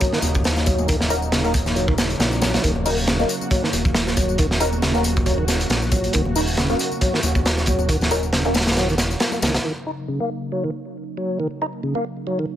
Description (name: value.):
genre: breakbeat, breaks.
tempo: 137 BPM.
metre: 4/4.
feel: swing 55% on 16ths.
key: Eb minor.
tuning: A4 = 440 Hz.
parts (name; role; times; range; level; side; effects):
lush unison pad; sustained chords; 0.0-12.6 s; Db3 to Gb4; -28 LUFS; right 1 dB; chorus, phaser, sidechain pumping.
tonewheel organ; riff; 0.0-12.5 s; Db3 to Eb4; -25 LUFS; equal; overdrive, fast rotary speaker, low-pass filter, ping-pong delay.
filtered dub chord stab; stabs; 0.0-12.0 s; Db4 to Bb4; -28 LUFS; left 1 dB; phaser, ensemble chorus, ping-pong delay.
crunchy breakbeat drum kit; drums; 0.0-9.6 s; hi-hat, kick drum, snare drum; -21 LUFS; equal; none.
tambourine; drums; 0.0-9.6 s; none; -33 LUFS; left 7 dB; none.
congas; percussion; 0.0-9.5 s; none; -33 LUFS; left 4 dB; none.
fat analog bass; bass; 0.2-9.6 s; Eb1 to Db2; -24 LUFS; equal; tube saturation.
room: little or no reverb.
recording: none.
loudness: -18 LUFS.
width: side -11 dB against mid.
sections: 0.0-9.6 A section; 9.6-12.6 B section.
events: filter sweep on tonewheel organ 9.6-12.6; filter sweep on analog synth pad 9.6-12.6.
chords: 0.0 Ebm7.